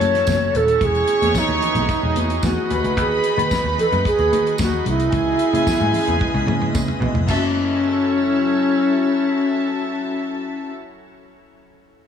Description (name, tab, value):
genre	disco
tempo	111 BPM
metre	4/4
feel	straight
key	F# dorian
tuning	A4 = 440 Hz
part	alto flute	melody	0.0-10.7 s	C#4 to C#5	-19 LUFS	equal	none
part	dark studio string section	second line	0.0-10.7 s	F#4 to C#6	-25 LUFS	left 1 dB	none
part	soft additive organ-like pad	sustained chords	0.0-10.7 s	C#3 to D#5	-26 LUFS	right 1 dB	ensemble chorus, built-in reverb
part	picked electric bass	bass	0.0-10.7 s	D#1 to D#3	-23 LUFS	equal	none
part	damped 70s drum kit	drums	0.0-7.4 s	crash cymbal, hi-hat, kick drum, snare drum, toms	-25 LUFS	equal	gated reverb
part	congas	percussion	0.0-7.5 s	none	-29 LUFS	left 6 dB	none
part	tambourine	percussion	0.3-7.5 s	none	-34 LUFS	right 7 dB	none
room	small room reverb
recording	small room ambience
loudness	-16 LUFS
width	side -8 dB against mid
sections	0.0-7.3 A section; 7.3-11.6 B section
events	drum fill 6.2-7.3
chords	0.0 F#m7; 0.8 Emaj7; 2.7 G#m7; 5.1 C#m7; 7.3 F#m7